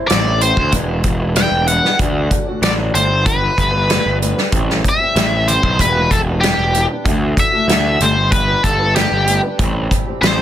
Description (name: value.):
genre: quiet-loud alternative rock.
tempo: 95 BPM.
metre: 4/4.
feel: straight.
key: A dorian.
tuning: A4 = 440 Hz.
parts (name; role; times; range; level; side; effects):
fingerpicked old ladder-braced acoustic guitar; arpeggios; 0.0-10.4 s; A2 to D5; -23 LUFS; equal; none.
biting lead guitar; melody; 0.1-10.4 s; G4 to G5; -17 LUFS; left 1 dB; overdrive, digital delay.
fuzz picked electric bass; bass; 0.1-10.4 s; E1 to D2; -18 LUFS; equal; overdrive.
loose indie drum kit; drums; 0.1-10.4 s; hi-hat, kick drum, snare drum; -18 LUFS; equal; none.
room: light reverb.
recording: dense, heavily limited modern master.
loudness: -13 LUFS.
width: side -11 dB against mid.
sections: 0.0-10.4 A section.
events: none.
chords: 0.0 Am7; 0.7 Em7; 2.0 Dadd9; 3.0 Gadd9; 4.5 Am7; 5.8 Em7; 7.1 Dadd9; 8.0 Gadd9; 9.6 Am7.